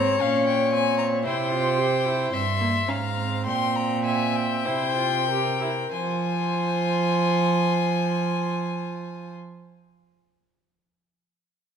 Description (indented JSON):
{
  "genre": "classical, baroque-style fugue for string quartet",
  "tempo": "46-60 BPM",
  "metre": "4/4",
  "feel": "straight",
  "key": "F minor",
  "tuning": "A4 = 440 Hz",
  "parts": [
    { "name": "warm violin", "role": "melody", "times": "0.0-9.3 s", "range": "F5 to C6", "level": "-28 LUFS", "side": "left 11 dB", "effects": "none" },
    { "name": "dark violin", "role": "second line", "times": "0.0-9.3 s", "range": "Bb4 to G5", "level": "-27 LUFS", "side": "left 2 dB", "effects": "none" },
    { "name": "warm viola", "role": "accompaniment", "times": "0.0-9.4 s", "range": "Bb3 to G4", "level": "-30 LUFS", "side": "right 4 dB", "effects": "none" },
    { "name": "rich cello", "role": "bass", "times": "0.0-9.4 s", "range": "G2 to F3", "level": "-27 LUFS", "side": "right 5 dB", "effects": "none" }
  ],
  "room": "moderate recital hall reverb, RT60 1.7 s",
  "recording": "minimal, uncompressed stereo recording",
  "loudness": "-21 LUFS",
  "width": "side -7 dB against mid",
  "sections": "0.0-5.9 A section; 5.9-11.2 B section",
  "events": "slowing down 0.0-5.9",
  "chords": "0.0 Gdim; 1.3 C7; 5.9 Fm"
}